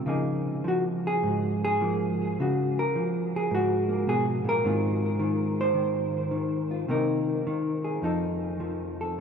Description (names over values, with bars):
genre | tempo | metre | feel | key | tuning
solo jazz | 105 BPM | 4/4 | swing 67% on 8ths, rubato | unclear | A4 = 440 Hz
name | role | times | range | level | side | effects
hollow-body jazz guitar | solo | 0.0-9.2 s | F2 to C5 | -24 LUFS | equal | tape echo
room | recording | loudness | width
wet huge ambient reverb, RT60 8.0 s | dreamy mix soaked in reverb, nothing above 11.0 kHz | -24 LUFS | side -6 dB against mid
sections
0.0-9.2 A section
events
none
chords
0.1 Db69; 4.6 Ab69; 6.9 Cm7; 8.0 F7